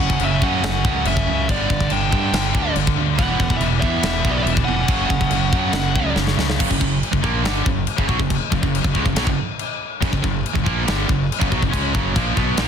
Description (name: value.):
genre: heavy metal.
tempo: 141 BPM.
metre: 4/4.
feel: straight.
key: F# phrygian dominant.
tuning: A4 = 440 Hz.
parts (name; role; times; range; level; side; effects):
high-gain lead guitar; melody; 0.0-6.1 s; D5 to G5; -25 LUFS; right 1 dB; distortion, ping-pong delay.
nasal lead guitar with a parked wah; second line; 0.0-6.1 s; B3 to D4; -30 LUFS; right 5 dB; overdrive.
high-gain distorted guitar; riff; 0.0-12.7 s; E2 to C#4; -23 LUFS; right 12 dB; distortion.
scooped high-gain guitar; riff; 0.0-12.7 s; F#2 to C#4; -25 LUFS; left 13 dB; distortion.
fuzz fingered electric bass; bass; 0.0-12.7 s; E1 to G2; -24 LUFS; left 1 dB; overdrive.
tight metal drum kit; drums; 0.1-12.7 s; china cymbal, crash cymbal, kick drum, snare drum; -22 LUFS; left 1 dB; soft clipping on kick.
room: light reverb.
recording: dense, heavily limited modern master.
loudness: -17 LUFS.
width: side -7 dB against mid.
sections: 0.0-6.6 A section; 6.6-12.7 B section.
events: drum fill 6.2-6.6.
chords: 0.0 F#5; 1.5 G; 3.2 Em; 4.9 F#5; 6.6 F#.